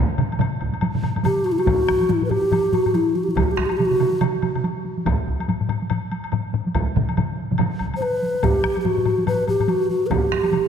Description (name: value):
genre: japanese traditional, taiko drum ensemble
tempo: 142 BPM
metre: 4/4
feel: swing 60% on 16ths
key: unclear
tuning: A4 = 440 Hz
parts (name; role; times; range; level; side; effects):
- solo taiko drums; percussion; 0.2-9.7 s; none; -26 LUFS; left 7 dB; none
- taiko ensemble; percussion; 0.2-10.7 s; none; -26 LUFS; right 6 dB; none
- woodblock; percussion; 0.2-10.6 s; none; -33 LUFS; left 5 dB; none
- taiko ensemble; percussion; 0.3-10.6 s; none; -26 LUFS; right 2 dB; none
- taiko ensemble; percussion; 0.6-10.4 s; none; -25 LUFS; right 1 dB; none
- mellow bass ocarina; melody; 1.2-4.2, 8.0-10.7 s; E4 to C5; -20 LUFS; equal; tape echo
room: wet concert hall reverb, RT60 2.4 s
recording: none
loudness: -18 LUFS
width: side -8 dB against mid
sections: 0.0-1.7 A section; 1.7-10.7 B section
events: none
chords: none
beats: 0.39 0.82 1.24 | 1.67 2.09 2.52 2.94 | 3.37 3.79 4.21 4.64 | 5.06 5.48 5.90 6.33 | 6.75 7.17 7.59 8.01 | 8.43 8.85 9.27 9.69 | 10.11 10.53